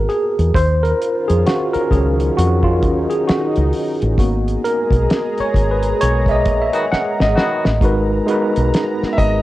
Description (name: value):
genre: R&B, neo-soul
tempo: 66 BPM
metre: 4/4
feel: swing 60% on 16ths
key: G# minor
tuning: A4 = 440 Hz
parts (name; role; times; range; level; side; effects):
- tine electric piano; accompaniment; 0.0-9.4 s; F#3 to F#5; -18 LUFS; equal; overdrive, fast stereo tremolo
- deep dub fingered electric bass; bass; 0.0-9.4 s; G#1 to E#2; -18 LUFS; equal; transformer saturation
- cloth-damped thuddy drum kit; drums; 0.1-9.4 s; hi-hat, kick drum, snare drum; -19 LUFS; equal; cassette tape
- lush unison pad; sustained chords; 0.9-9.4 s; D#3 to A#5; -24 LUFS; equal; chorus
- clear horn section; stabs; 6.7-7.7 s; D#3 to F#4; -24 LUFS; left 2 dB; none
- clear grand piano; melody; 9.1-9.4 s; D#5 to E5; -17 LUFS; equal; cassette tape
room: light reverb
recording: home recording on cassette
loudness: -14 LUFS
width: side -16 dB against mid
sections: 0.0-7.8 A section; 7.8-9.4 B section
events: tine electric piano solo 0.0-7.8; band accent 4.2-7.8; drum fill 6.9-7.8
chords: 0.0 G#m9; 0.5 D#m9; 4.2 G#m9